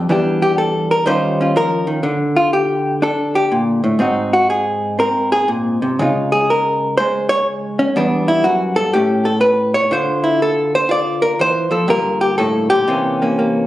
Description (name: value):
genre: solo jazz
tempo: 122 BPM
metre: 4/4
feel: swing 67% on 8ths, rubato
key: unclear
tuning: A4 = 438 Hz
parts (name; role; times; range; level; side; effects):
- hollow-body jazz guitar; solo; 0.0-13.7 s; E2 to D5; -14 LUFS; equal; none
room: moderate large studio reverb, RT60 1.2 s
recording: recorded on a phone in the room, club reverb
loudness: -14 LUFS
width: side -15 dB against mid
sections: 0.0-13.7 A section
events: hollow-body jazz guitar solo 0.0-13.7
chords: 0.1 Em7b5; 1.1 Eb9; 2.0 Dsus4; 4.0 Ab7; 6.0 Dbadd9; 8.0 Em; 8.9 A; 9.9 Dmadd9; 11.9 Gm9; 12.9 C7b9